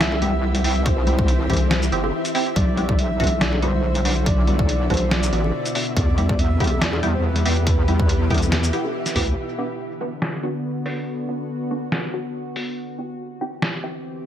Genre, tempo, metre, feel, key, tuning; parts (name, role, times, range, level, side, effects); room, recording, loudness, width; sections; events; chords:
deep dubstep; 141 BPM; 4/4; swing 54% on 16ths, half-time; B phrygian; A4 = 438 Hz
breathy flute-like synth lead; melody; 0.0-8.9 s; B4 to E5; -29 LUFS; equal; tremolo, lush chorus, dub echo
bowed-like drone; sustained chords; 0.3-14.3 s; B2 to G4; -29 LUFS; left 1 dB; built-in reverb
wobble bass; bass; 0.0-9.4 s; G1 to E2; -21 LUFS; equal; chorus
trip hop sampler-style drum kit; drums; 0.0-13.7 s; hi-hat, shaker, snare drum; -25 LUFS; equal; low-pass filter on hats, low-pass filter on snare, low-pass filter on perc
flickering grainy texture; texture; 0.0-9.4 s; E4 to E5; -31 LUFS; equal; built-in reverb
bongos and congas; percussion; 0.1-8.9 s; -29 LUFS; left 2 dB; dub echo
filtered dub chord stab; stabs; 0.2-14.0 s; B3 to G4; -28 LUFS; right 2 dB; phaser, lush chorus, vintage 12-bit sampler grit, analog delay
electronic kick drum; drums; 0.9-9.2 s; -22 LUFS; equal
light reverb; echo-heavy mix; -19 LUFS; side -10 dB against mid
0.0-9.4 A section; 9.4-14.3 B section
drop 0.0-9.4; filter sweep on drum 9.4-14.3; filter sweep on synth drone 9.4-14.3
0.0 C; 2.6 Bm; 6.0 Em; 9.4 Bm; 12.8 C